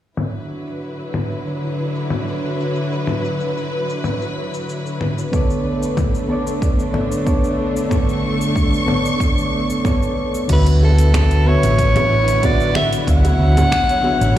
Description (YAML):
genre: sunset chillout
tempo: 93 BPM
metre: 4/4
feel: straight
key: D major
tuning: A4 = 439 Hz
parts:
  - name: warm studio string section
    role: sustained chords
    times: 0.2-14.4 s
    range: D3 to C#6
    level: -22 LUFS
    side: equal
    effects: none
  - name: deep house drum kit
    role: drums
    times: 0.2-14.3 s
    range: cabasa, congas, crash cymbal, finger snaps, hi-hat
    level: -25 LUFS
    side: left 2 dB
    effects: overdrive, low-pass filter on perc, small room ambience, low-pass filter on hats, low-pass filter on cymbals, low-pass filter on snare
  - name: soft electric-piano-like synth keys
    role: accompaniment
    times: 5.3-14.4 s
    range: D3 to F#5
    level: -21 LUFS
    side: right 1 dB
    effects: chorus, auto-pan, tape echo
  - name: electronic kick drum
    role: drums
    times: 5.3-13.9 s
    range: none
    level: -19 LUFS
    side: equal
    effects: overdrive, small room ambience
  - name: warm soprano saxophone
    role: melody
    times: 10.5-14.4 s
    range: A4 to F#5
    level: -19 LUFS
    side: equal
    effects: tape echo
  - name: hollow-body short-scale fingered electric bass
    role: bass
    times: 10.5-14.4 s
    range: A1 to D2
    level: -15 LUFS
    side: equal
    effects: none
  - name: bongos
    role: percussion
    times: 10.8-14.2 s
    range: none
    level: -30 LUFS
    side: right 4 dB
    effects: none
room: moderate scoring stage reverb, RT60 1.9 s, digital ambience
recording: played on a big sound system in a bare room, large studio reverb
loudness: -15 LUFS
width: side -12 dB against mid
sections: 0.2-10.5 A section; 10.5-14.4 B section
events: filter sweep on drum 0.2-10.5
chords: 0.2 D69; 5.3 Bm9; 10.5 D69